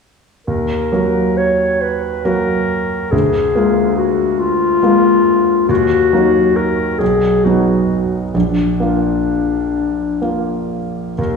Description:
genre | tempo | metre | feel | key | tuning
classical, romantic duo for clarinet and grand piano | 41-47 BPM (dotted quarters) | 6/8 | rubato | Eb minor | A4 = 441 Hz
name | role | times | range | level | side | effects
warm clarinet | melody | 0.5-11.4 s | D4 to Db5 | -16 LUFS | left 4 dB | none
clear concert grand piano | accompaniment | 0.5-11.4 s | Bb1 to Gb4 | -16 LUFS | right 2 dB | none
room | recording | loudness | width
wet recital hall reverb, RT60 1.3 s | heard from further back in the room, studio ambience | -13 LUFS | side -5 dB against mid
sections
0.5-11.4 A section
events
none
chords
0.5 Ebm; 3.1 Bb7/D; 5.7 Ebm; 7.0 B; 8.3 Bb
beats
| 0.48 1.82 | 3.13 4.41 | 5.70 7.01 | 8.35 9.75 | 11.18

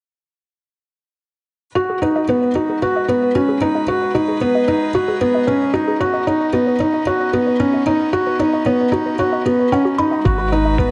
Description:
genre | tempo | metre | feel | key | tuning
piano and strings electronica | 113 BPM | 4/4 | straight | G# minor | A4 = 440 Hz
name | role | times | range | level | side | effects
rich string quartet | sustained chords | 1.8-10.9 s | G#3 to B4 | -31 LUFS | equal | none
warbly dusty pluck | arpeggios | 1.8-10.9 s | F#4 to B5 | -26 LUFS | equal | chorus, sidechain pumping, digital delay
felt-muted upright piano | riff | 1.8-10.9 s | B3 to F#4 | -18 LUFS | equal | digital delay
round analog bass | bass | 10.3-10.9 s | G#1 | -22 LUFS | equal | sidechain pumping
electronic kick drum | drums | 10.3-10.9 s | none | -20 LUFS | equal | none
room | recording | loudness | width
wet lush hall reverb, RT60 2.0 s | nothing above 10.5 kHz | -17 LUFS | mono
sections
1.8-10.9 A section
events
fade-in on string quartet 1.8-10.9; filter sweep on synth arpeggio sound 1.8-10.9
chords
1.8 G#m7; 6.0 Badd9; 10.3 G#m7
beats
| 1.76 2.29 2.82 3.35 | 3.88 4.41 4.94 5.47 | 6.01 6.54 7.07 7.60 | 8.13 8.66 9.19 9.72 | 10.25 10.79

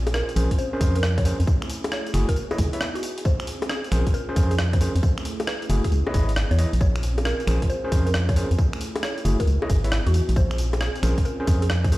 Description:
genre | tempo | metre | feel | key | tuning
UK garage, two-step garage | 135 BPM | 4/4 | swing 66% on 16ths | unclear | A4 = 441 Hz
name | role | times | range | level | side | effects
warm analog pad | sustained chords | 0.0-12.0 s | A3 to Ab4 | -35 LUFS | right 1 dB | chorus, sidechain pumping
organ-like FM bass | bass | 0.0-12.0 s | Gb1 to F2 | -21 LUFS | equal | sidechain pumping
mallet-like synth pluck | melody | 0.1-11.9 s | Gb4 to Db5 | -33 LUFS | right 1 dB | chorus, phaser, digital delay
breakbeat sampler-style drum kit | drums | 0.1-12.0 s | bongos, finger snaps, hi-hat, rim click, tambourine | -30 LUFS | left 1 dB | none
overdriven tine electric piano | stabs | 0.4-12.0 s | A3 to Fb5 | -30 LUFS | equal | digital delay
electronic kick drum | drums | 0.5-11.9 s | none | -23 LUFS | equal | none
room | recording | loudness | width
digital ambience | played on a big sound system in a bare room, stone room reverb | -20 LUFS | side -18 dB against mid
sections
0.0-12.0 A section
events
none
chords
0.0 Bbm9; 1.5 Gbm9; 2.4 Dbm9; 3.3 Bbm9; 5.0 Gbm9; 5.9 Dbm9; 6.8 Bbm9; 8.6 Gbm9; 9.5 Dbm9; 10.4 Bbm9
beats
0.14 0.58 1.03 | 1.47 1.92 2.36 2.81 | 3.25 3.69 4.14 4.58 | 5.03 5.47 5.92 6.36 | 6.81 7.25 7.70 8.14 | 8.58 9.03 9.47 9.92 | 10.36 10.81 11.25 11.70

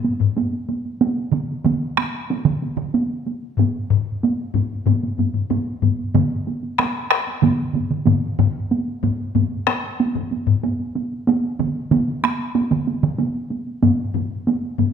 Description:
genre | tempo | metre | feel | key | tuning
japanese traditional, taiko drum ensemble | 94 BPM | 4/4 | straight | none | none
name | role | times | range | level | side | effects
taiko ensemble | percussion | 0.0-14.9 s | none | -22 LUFS | right 4 dB | none
taiko ensemble | percussion | 0.2-14.9 s | none | -21 LUFS | left 7 dB | none
taiko ensemble | percussion | 1.3-13.2 s | none | -22 LUFS | right 5 dB | none
room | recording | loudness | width
wet recital hall reverb, RT60 1.3 s | recorded in a church or concert hall | -19 LUFS | side -7 dB against mid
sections
0.0-14.9 A section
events
none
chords
none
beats
0.36 | 1.01 1.65 2.29 2.94 | 3.58 4.22 4.87 5.51 | 6.15 6.79 7.43 8.07 | 8.71 9.35 9.99 10.63 | 11.27 11.91 12.55 13.19 | 13.83 14.46

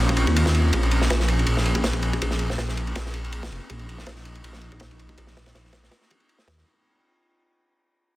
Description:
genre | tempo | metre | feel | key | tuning
drum and bass, jungle | 162 BPM | 4/4 | swing 53% on 16ths | Bb minor | A4 = 440 Hz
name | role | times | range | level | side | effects
airy breathy pad | sustained chords | 0.0-6.6 s | Bb3 to Ab4 | -30 LUFS | equal | chorus, vintage 12-bit sampler grit
dark detuned saw bass | bass | 0.0-6.6 s | F1 to Eb2 | -23 LUFS | equal | none
crunchy breakbeat drum kit | drums | 0.1-6.7 s | kick drum, ride cymbal, snare drum | -27 LUFS | equal | high-pass filter on kick, high-pass filter on cymbals, high-pass filter on snare, high-pass filter on room
room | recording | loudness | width
light reverb, studio reverb | dense, heavily limited modern master | -20 LUFS | side -17 dB against mid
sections
0.0-6.7 A section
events
fade-out 0.0-6.7; filter sweep on analog synth pad 0.0-6.7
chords
0.0 Bbm9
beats
0.36 | 0.73 1.10 1.47 1.84 | 2.21 2.58 2.96 3.33 | 3.69 4.07 4.44 4.81 | 5.18 5.55 5.92 6.29

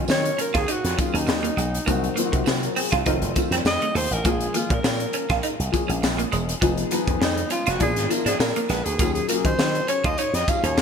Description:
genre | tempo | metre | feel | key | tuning
polished 1980s jazz-funk pop | 101 BPM | 4/4 | swing 54% on 16ths | unclear | A4 = 437 Hz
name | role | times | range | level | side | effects
dark grand piano | accompaniment | 0.0-10.8 s | Eb3 to C5 | -28 LUFS | left 5 dB | lush chorus
slap bass with an envelope filter | bass | 0.0-10.8 s | Fb1 to Eb3 | -26 LUFS | right 1 dB | none
breathy alto saxophone | melody | 0.1-10.8 s | Eb4 to F5 | -26 LUFS | equal | ping-pong delay
semi-hollow electric guitar | riff | 0.1-10.8 s | Ab3 to F4 | -29 LUFS | right 6 dB | lush chorus
crisp fusion drum kit | drums | 0.1-10.8 s | hi-hat, kick drum, snare drum | -25 LUFS | equal | gated reverb
tambourine | percussion | 0.1-10.8 s | none | -40 LUFS | right 13 dB | none
room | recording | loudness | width
light reverb, small room reverb | bright 1980s-style digital production | -20 LUFS | side -6 dB against mid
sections
0.0-10.8 A section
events
alto saxophone solo 0.0-10.8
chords
0.0 Ebm9; 1.9 Cm7b5; 3.1 F7b9; 4.3 Bbm7; 6.6 Fm7b5; 7.8 Bb7b9; 9.0 Ebm11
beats
0.09 0.69 1.28 | 1.88 2.47 3.06 3.66 | 4.25 4.84 5.44 6.03 | 6.62 7.22 7.81 8.40 | 8.99 9.59 10.18 10.77

